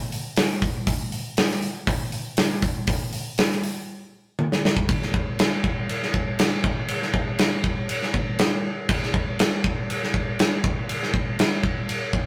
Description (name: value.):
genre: rock.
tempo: 120 BPM.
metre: 4/4.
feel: straight.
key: none.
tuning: none.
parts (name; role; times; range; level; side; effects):
big rock drum kit; drums; 0.1-12.2 s; crash cymbal, hi-hat, kick drum, snare drum, toms; -24 LUFS; equal; none.
room: moderate stone room reverb, RT60 1.1 s.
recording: rough rehearsal-room recording, warm saturation.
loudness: -24 LUFS.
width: mono.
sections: 0.0-4.9 A section; 4.9-12.3 B section.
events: drum fill 4.4-4.9.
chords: none.